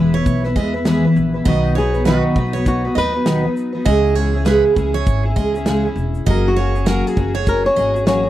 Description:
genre	acoustic pop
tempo	100 BPM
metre	4/4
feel	swing 60% on 16ths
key	B major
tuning	A4 = 439 Hz
part	fingerpicked twelve-string acoustic guitar	accompaniment	0.0-8.3 s	B2 to B4	-17 LUFS	equal	none
part	upright bass	bass	0.0-8.3 s	E1 to E2	-21 LUFS	equal	none
part	picked steel-string acoustic guitar	arpeggios	0.1-7.9 s	A#4 to D#5	-25 LUFS	right 9 dB	none
part	natural country drum kit	drums	0.3-8.2 s	kick drum, shaker, snare drum	-19 LUFS	equal	none
part	flamenco guitar	melody	1.5-8.3 s	F#4 to C#5	-20 LUFS	left 2 dB	none
room	little or no reverb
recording	dry, close 1970s-style studio recording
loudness	-14 LUFS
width	side -13 dB against mid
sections	0.0-8.3 A section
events	none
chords	0.0 E; 1.5 B; 3.9 C#m; 6.3 F#add9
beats	0.26 0.86 | 1.46 2.06 2.66 3.26 | 3.87 4.47 5.07 5.67 | 6.27 6.87 7.47 8.07

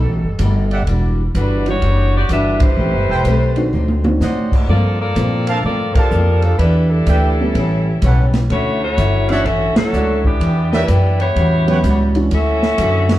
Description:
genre	jazz, big band swing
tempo	126 BPM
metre	4/4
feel	swing 66% on 8ths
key	D major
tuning	A4 = 439 Hz
part	bright saxophone section	melody	0.0-13.2 s	E3 to F#5	-20 LUFS	left 1 dB	none
part	picked old ladder-braced acoustic guitar	accompaniment	0.0-13.1 s	G2 to B4	-24 LUFS	left 2 dB	none
part	upright bass	bass	0.0-13.2 s	E1 to Bb2	-16 LUFS	equal	none
part	open jazz drum kit	drums	0.4-13.2 s	crash cymbal, hi-hat, kick drum, ride cymbal, snare drum, toms	-21 LUFS	equal	none
part	mellow trumpet section	stabs	0.7-11.8 s	F#4 to A5	-24 LUFS	right 3 dB	none
part	warm baby grand piano	accompaniment	1.7-12.3 s	Eb3 to A4	-22 LUFS	right 1 dB	none
room	moderate large studio reverb, RT60 0.9 s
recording	heard from further back in the room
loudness	-13 LUFS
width	side -14 dB against mid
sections	0.0-12.3 A section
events	band accent 2.5, 5.9, 9.7; drum fill 3.7-4.2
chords	0.0 B7alt; 0.9 Em9; 2.8 Am9; 3.7 D7b9; 4.7 Gm11; 6.6 Em7; 7.5 A9; 8.5 Dmaj9; 10.4 Em7; 11.4 A13; 12.3 Dmaj9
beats	0.39 | 0.87 1.35 1.82 2.30 | 2.78 3.25 3.73 4.21 | 4.69 5.16 5.64 6.12 | 6.59 7.07 7.55 8.02 | 8.50 8.98 9.45 9.93 | 10.41 10.88 11.36 11.83 | 12.31 12.79

